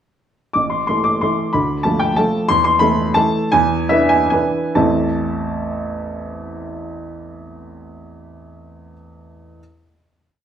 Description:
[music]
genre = classical, piano waltz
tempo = 127-194 BPM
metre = 3/4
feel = rubato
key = A minor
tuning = A4 = 438 Hz
[part]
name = clear upright piano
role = solo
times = 0.5-9.6 s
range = A1 to D6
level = -16 LUFS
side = equal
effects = none
[sound]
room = wet stone room reverb, RT60 1.2 s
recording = none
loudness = -15 LUFS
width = side -9 dB against mid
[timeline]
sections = 0.6-4.8 A section; 4.8-7.5 final chord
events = slowing down 2.0-4.8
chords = 0.6 Am; 1.6 Dm; 2.5 A5/E; 3.5 E7; 4.8 Am

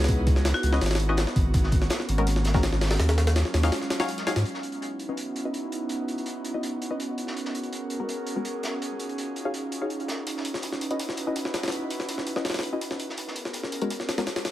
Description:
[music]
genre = drum and bass, jungle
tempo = 165 BPM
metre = 4/4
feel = straight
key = C# dorian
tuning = A4 = 440 Hz
[part]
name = airy breathy pad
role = sustained chords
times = 0.0-14.5 s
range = F#3 to B4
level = -32 LUFS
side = right 1 dB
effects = chorus
[part]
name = saturated sub bass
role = bass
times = 0.0-4.4 s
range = G#1 to G#2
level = -23 LUFS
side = equal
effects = tube saturation
[part]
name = jungle sampler-style drum kit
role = drums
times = 0.0-4.4, 10.3-14.5 s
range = hi-hat, kick drum, snare drum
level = -27 LUFS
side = equal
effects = small room ambience
[part]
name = crunchy breakbeat drum kit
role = drums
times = 0.1-14.5 s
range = hi-hat, snare drum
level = -37 LUFS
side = right 1 dB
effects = high-pass filter on hats, small room ambience, high-pass filter on snare, high-pass filter on room
[part]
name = marimba with hard mallets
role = melody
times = 0.5-0.9 s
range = F#4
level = -35 LUFS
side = equal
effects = dub echo
[part]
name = filtered dub chord stab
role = stabs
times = 0.7-14.3 s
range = G#3 to E#5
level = -33 LUFS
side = left 2 dB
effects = chorus, dub echo
[sound]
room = studio reverb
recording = vinyl crackle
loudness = -25 LUFS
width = side -14 dB against mid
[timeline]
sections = 0.0-4.5 A section; 4.5-14.5 B section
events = drop 0.0-4.5; filter sweep on synth stab 4.5-14.5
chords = 0.0 C#m11; 1.5 G#m11; 3.0 D#m11; 4.5 C#m11; 7.4 G#m11; 8.8 D#m11; 10.3 C#m11; 13.2 G#m11

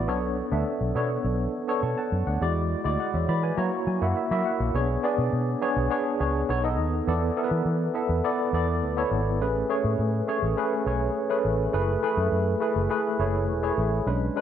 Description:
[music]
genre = polished 1980s jazz-funk pop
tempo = 103 BPM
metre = 4/4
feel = straight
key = B dorian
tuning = A4 = 440 Hz
[part]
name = tine electric piano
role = accompaniment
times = 0.0-14.4 s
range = G#3 to C#6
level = -25 LUFS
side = equal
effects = overdrive, fast stereo tremolo, lush chorus
[part]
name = vintage muted fingered electric bass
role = bass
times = 0.0-14.3 s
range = E1 to F#3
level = -27 LUFS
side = equal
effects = none
[sound]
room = light reverb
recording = none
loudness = -23 LUFS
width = side -9 dB against mid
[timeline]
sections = 0.0-4.7 A section; 4.7-14.4 B section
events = tine electric piano fill 3.0-4.7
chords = 0.1 Bm9; 2.4 E9; 3.6 F#7; 4.7 Bm69; 6.5 B9; 7.1 E7sus4; 9.4 Amaj9; 11.7 F#m11

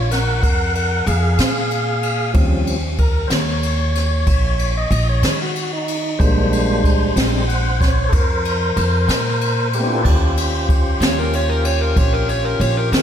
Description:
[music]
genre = slow blues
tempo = 62 BPM (dotted quarters)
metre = 12/8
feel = straight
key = Eb mixolydian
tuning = A4 = 440 Hz
[part]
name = tonewheel organ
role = sustained chords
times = 0.0-13.0 s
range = F3 to Gb5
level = -21 LUFS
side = equal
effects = slow rotary speaker
[part]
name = upright bass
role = bass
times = 0.0-13.0 s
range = Bb1 to Eb3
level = -19 LUFS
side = equal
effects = none
[part]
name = jazz brush drum kit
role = drums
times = 0.1-13.0 s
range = crash cymbal, kick drum, ride cymbal, snare drum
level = -20 LUFS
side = equal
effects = none
[part]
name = overdriven slide guitar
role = melody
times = 11.0-13.0 s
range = Bb4 to Db5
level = -21 LUFS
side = right 1 dB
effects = slapback echo
[sound]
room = moderate scoring stage reverb, RT60 2.1 s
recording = big arena sound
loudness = -15 LUFS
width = side -9 dB against mid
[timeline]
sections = 0.0-10.0 A section; 10.0-13.0 A section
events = tonewheel organ solo 0.0-10.0; electric slide guitar solo 10.0-13.0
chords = 0.0 Bb7(no3); 2.4 Eb7(no3); 6.2 Bb13; 10.0 Eb13

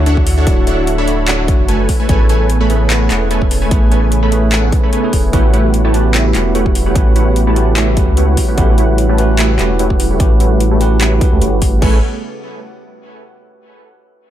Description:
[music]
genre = future bass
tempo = 148 BPM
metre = 4/4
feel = swing 54% on 16ths, half-time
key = A major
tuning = A4 = 440 Hz
[part]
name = bell-like tine electric piano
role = accompaniment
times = 0.0-12.0 s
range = A3 to F#5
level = -21 LUFS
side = right 2 dB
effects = fast stereo tremolo, sidechain pumping, diffuse ambient delay
[part]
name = airy breathy pad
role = sustained chords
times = 0.0-12.0 s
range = C#3 to G#5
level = -23 LUFS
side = right 1 dB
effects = chorus, sidechain pumping
[part]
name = supersaw stab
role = riff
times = 0.0-12.0 s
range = A3 to B5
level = -18 LUFS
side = right 1 dB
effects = sidechain pumping, low-pass filter, diffuse ambient delay
[part]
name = saturated sub bass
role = bass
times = 0.0-12.0 s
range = D1 to D2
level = -14 LUFS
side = equal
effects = sidechain pumping
[part]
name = sub drop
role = sound effects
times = 0.0-0.5 s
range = none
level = barely audible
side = none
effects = none
[part]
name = dubstep drum kit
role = drums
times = 0.1-11.9 s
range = crash cymbal, handclaps, hi-hat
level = -21 LUFS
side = left 1 dB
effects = overdrive
[part]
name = electronic kick drum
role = drums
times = 0.2-11.9 s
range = none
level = -14 LUFS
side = equal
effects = overdrive
[sound]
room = light reverb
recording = none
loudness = -10 LUFS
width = side -12 dB against mid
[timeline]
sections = 0.0-11.8 A section; 11.8-13.4 B section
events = impact 0.0-0.5; filter sweep on supersaw synth 0.0-11.8; filter sweep on analog synth pad 0.0-11.8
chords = 0.0 Dmaj9; 1.9 Amaj9; 5.3 A13; 11.8 Amaj9

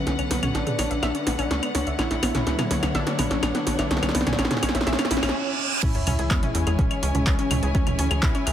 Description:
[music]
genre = melodic techno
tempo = 125 BPM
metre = 4/4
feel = straight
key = C# phrygian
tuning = A4 = 440 Hz
[part]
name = analog synth brass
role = melody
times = 0.0-8.5 s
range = C#4 to E4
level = -30 LUFS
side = equal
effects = chorus, sidechain pumping, dub echo
[part]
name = rich chamber string section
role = sustained chords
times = 0.0-8.5 s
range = D3 to G#5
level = -34 LUFS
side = left 1 dB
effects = sidechain pumping
[part]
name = analog pluck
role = arpeggios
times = 0.0-8.5 s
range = G#3 to E5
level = -31 LUFS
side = equal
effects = chorus, sidechain pumping, analog delay
[part]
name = brassy analog pad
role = stabs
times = 0.0-8.2 s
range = D3 to C#4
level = -32 LUFS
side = left 3 dB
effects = chorus, sidechain pumping, analog delay
[part]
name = tight sequencer bass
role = bass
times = 0.0-8.5 s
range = B1 to E2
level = -27 LUFS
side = equal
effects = sidechain pumping
[part]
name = riser, reverse cymbal and sub drop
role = sound effects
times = 1.5-7.7 s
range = none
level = -32 LUFS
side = right 2 dB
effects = none
[part]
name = punchy analog drum machine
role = drums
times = 0.1-8.5 s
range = claves, crash cymbal, handclaps, hi-hat, snare drum, toms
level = -26 LUFS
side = equal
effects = analog delay
[part]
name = electronic kick drum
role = drums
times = 5.8-8.3 s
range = none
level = -23 LUFS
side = equal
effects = overdrive
[sound]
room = moderate echo chamber reverb, RT60 2.4 s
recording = echo-heavy mix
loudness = -21 LUFS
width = side -10 dB against mid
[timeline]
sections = 0.0-5.8 A section; 5.8-8.5 B section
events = build-up 0.0-5.8; drum fill 0.0-5.3; filter sweep on synth arpeggio sound 0.0-5.8; filter sweep on analog polysynth 0.0-5.8; filter sweep on analog synth pad 0.0-5.8; reverse cymbal 4.9-5.8; break 5.3-5.8; drop 5.8-8.5; impact 5.8-7.7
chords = 0.0 Bm; 5.8 C#m

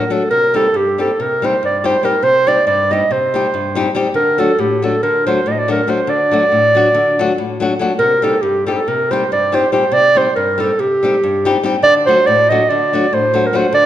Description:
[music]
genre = balkan folk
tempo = 281 BPM (eighths)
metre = 9/8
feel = straight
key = unclear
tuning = A4 = 441 Hz
[part]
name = mellow clarinet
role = melody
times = 0.0-13.9 s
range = G4 to Eb5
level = -13 LUFS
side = right 2 dB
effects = none
[part]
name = nylon-string guitar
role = accompaniment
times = 0.0-13.9 s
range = G2 to G4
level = -18 LUFS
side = left 4 dB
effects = none
[sound]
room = wet recital hall reverb, RT60 1.4 s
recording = dark, warm production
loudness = -12 LUFS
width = side -12 dB against mid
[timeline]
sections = 0.0-8.0 A section; 8.0-13.9 A section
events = none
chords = 0.3 Cm; 4.1 D; 8.0 Cm; 11.8 D

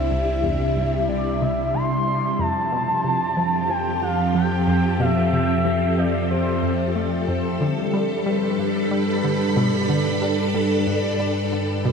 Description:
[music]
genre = ambient, sequencer-driven space music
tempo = 92 BPM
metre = 4/4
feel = straight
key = unclear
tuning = A4 = 445 Hz
[part]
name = expressive synth lead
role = melody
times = 0.0-6.9 s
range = C5 to C6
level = -25 LUFS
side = left 1 dB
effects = chorus, ping-pong delay
[part]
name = phased string machine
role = sustained chords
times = 0.0-11.9 s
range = C3 to B5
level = -22 LUFS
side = equal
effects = ensemble chorus, phaser
[part]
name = analog drone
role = bass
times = 0.0-11.9 s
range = C2 to G2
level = -27 LUFS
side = equal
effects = chorus
[part]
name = analog pluck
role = riff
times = 0.1-11.9 s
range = C2 to A3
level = -27 LUFS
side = equal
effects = chorus, ping-pong delay
[part]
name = concert harp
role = arpeggios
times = 7.6-11.9 s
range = D4 to D5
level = -33 LUFS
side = right 3 dB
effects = auto-pan, ping-pong delay
[sound]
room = wet cathedral reverb, RT60 6.7 s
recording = dreamy mix soaked in reverb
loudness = -19 LUFS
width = side -6 dB against mid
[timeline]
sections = 0.0-11.9 A section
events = none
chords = 0.0 C; 2.4 Fadd9; 7.6 G

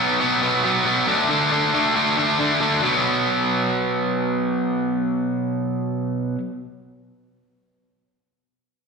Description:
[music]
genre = rock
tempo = 137 BPM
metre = 4/4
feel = straight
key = unclear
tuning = A4 = 443 Hz
[part]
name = overdriven semi-hollow guitar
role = solo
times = 0.0-6.4 s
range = B2 to D4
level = -19 LUFS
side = equal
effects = slapback echo
[sound]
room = light reverb, digital ambience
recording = live gig heard through the venue's PA, recital hall reverb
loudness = -18 LUFS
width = side -4 dB against mid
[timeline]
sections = 0.0-2.8 A section; 2.8-6.3 B section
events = none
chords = 0.0 B5; 1.1 D5; 2.8 B5

